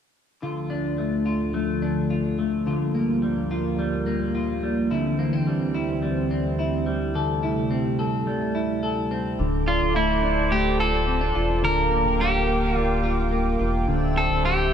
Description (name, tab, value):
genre	dream pop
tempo	107 BPM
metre	4/4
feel	straight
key	D minor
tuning	A4 = 436 Hz
part	warm analog pad	sustained chords	0.4-14.7 s	D2 to E6	-26 LUFS	right 2 dB	chorus
part	semi-hollow electric guitar	arpeggios	0.4-14.7 s	D3 to A4	-26 LUFS	left 2 dB	lush chorus, digital delay
part	sub bass with octave	bass	9.4-14.7 s	D1 to E1	-26 LUFS	equal	none
part	electric guitar at the edge of break-up	melody	9.7-14.7 s	E4 to Bb4	-23 LUFS	equal	digital delay
room	moderate plate reverb, RT60 3.5 s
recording	none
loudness	-21 LUFS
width	side -8 dB against mid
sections	0.4-9.4 A section; 9.4-14.7 B section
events	none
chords	0.4 Dm; 2.7 Gm7/D; 4.9 C/D; 7.1 Am7/D; 9.4 Dm; 11.6 Gm7/D; 13.9 C/D